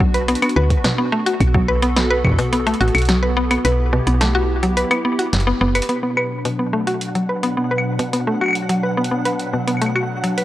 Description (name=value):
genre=IDM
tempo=107 BPM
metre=4/4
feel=straight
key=B minor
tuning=A4 = 440 Hz
part: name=hollow soft pad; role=sustained chords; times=0.0-10.4 s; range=B2 to A4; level=-25 LUFS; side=right 1 dB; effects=ensemble chorus
part: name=mallet-like synth pluck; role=arpeggios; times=0.0-10.4 s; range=B2 to B4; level=-19 LUFS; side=left 1 dB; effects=chorus, analog delay
part: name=woody FM bass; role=bass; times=0.0-5.8 s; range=F#1 to D2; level=-19 LUFS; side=equal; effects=none
part: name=electronic kick drum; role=drums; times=0.0-2.4 s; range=none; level=-17 LUFS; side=equal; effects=overdrive
part: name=electro analog drum machine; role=drums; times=0.1-10.4 s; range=claves, hi-hat, snare drum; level=-23 LUFS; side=left 1 dB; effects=none
part: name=flickering grainy texture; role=texture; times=6.5-10.4 s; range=F#5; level=-30 LUFS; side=equal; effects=built-in reverb, sidechain pumping
room=light reverb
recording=dry, gritty hardware recording, cassette tape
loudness=-16 LUFS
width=side -14 dB against mid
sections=0.0-5.9 A section; 5.9-10.4 B section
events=kick drops out 3.6-5.9; band accent 5.3; drum fill 5.6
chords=0.0 Bm; 1.4 F#m/B; 3.6 Em/B; 5.9 Bm